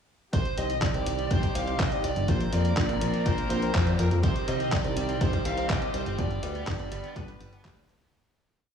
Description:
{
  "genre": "italo disco",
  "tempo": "123 BPM",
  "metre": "4/4",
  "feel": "straight",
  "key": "C minor",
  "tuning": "A4 = 439 Hz",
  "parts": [
    { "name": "smooth overdriven lead guitar", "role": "melody", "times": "0.3-7.9 s", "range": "Bb4 to F5", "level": "-32 LUFS", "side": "right 2 dB", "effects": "tape echo" },
    { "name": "rich chamber string section", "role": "sustained chords", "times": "0.3-8.1 s", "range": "D3 to Bb4", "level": "-34 LUFS", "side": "equal", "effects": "none" },
    { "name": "fat analog bass", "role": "bass", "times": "0.3-8.1 s", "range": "G1 to F2", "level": "-29 LUFS", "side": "equal", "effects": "tube saturation" },
    { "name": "detuned 8-bit digital drum machine", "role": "drums", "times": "0.3-8.1 s", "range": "handclaps, hi-hat", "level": "-35 LUFS", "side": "equal", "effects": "none" },
    { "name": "electronic kick drum", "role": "drums", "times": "0.3-7.7 s", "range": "none", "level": "-28 LUFS", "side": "equal", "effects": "none" },
    { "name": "tine electric piano", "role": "stabs", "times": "0.6-7.9 s", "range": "B3 to D5", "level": "-37 LUFS", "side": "left 2 dB", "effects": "analog chorus, low-pass filter, tape echo" },
    { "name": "semi-hollow electric guitar", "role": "arpeggios", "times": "4.2-8.1 s", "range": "B2 to C4", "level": "-41 LUFS", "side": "right 3 dB", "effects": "analog chorus, tape echo" }
  ],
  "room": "moderate plate reverb, RT60 1.6 s, digital ambience",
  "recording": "dreamy mix soaked in reverb, studio ambience",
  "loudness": "-24 LUFS",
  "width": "side -7 dB against mid",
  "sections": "0.3-8.1 verse",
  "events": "fade-out 5.5-8.1",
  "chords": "0.3 Cm; 2.3 Bbsus2; 4.2 Cm; 6.2 G"
}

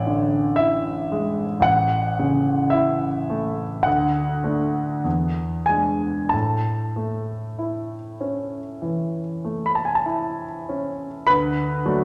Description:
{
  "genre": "classical, romantic nocturne for solo piano",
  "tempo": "45-58 BPM",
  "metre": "4/4",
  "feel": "rubato",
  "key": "A major",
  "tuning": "A4 = 440 Hz",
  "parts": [
    { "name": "clear concert grand piano", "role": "solo", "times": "0.0-12.0 s", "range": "A1 to B5", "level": "-23 LUFS", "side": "equal", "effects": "none" }
  ],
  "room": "wet recital hall reverb, RT60 1.4 s",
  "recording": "none",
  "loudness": "-23 LUFS",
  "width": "mono",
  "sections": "0.0-11.3 A section",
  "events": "none",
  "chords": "0.0 E7/A; 1.7 A; 3.9 D; 5.0 E7; 6.3 A; 11.3 D"
}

